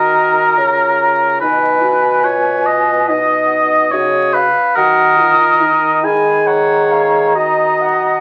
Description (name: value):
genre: classical, slow romantic movement for wind quintet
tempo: 71 BPM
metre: 4/4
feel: rubato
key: unclear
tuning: A4 = 441 Hz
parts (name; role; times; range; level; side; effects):
- mellow hollow concert flute; melody; 0.0-8.2 s; F#5 to D#6; -20 LUFS; equal; none
- warm oboe; second line; 0.0-8.2 s; Bb4 to D#5; -16 LUFS; equal; none
- dark French horn; accompaniment; 0.0-8.2 s; D#4 to G#4; -22 LUFS; equal; none
- warm clarinet; accompaniment; 0.0-8.2 s; B4 to G#5; -22 LUFS; equal; none
- dark bassoon; bass; 0.0-8.2 s; B2 to Eb3; -24 LUFS; equal; none
room: moderate large studio reverb, RT60 1.1 s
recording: very old 78 rpm record, vinyl crackle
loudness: -13 LUFS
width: mono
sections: 0.0-8.2 A section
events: none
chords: 0.0 Ebm; 1.4 B; 4.8 D#m7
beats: 0.57 | 1.43 2.26 3.10 3.94 | 4.78 5.62 6.48 7.36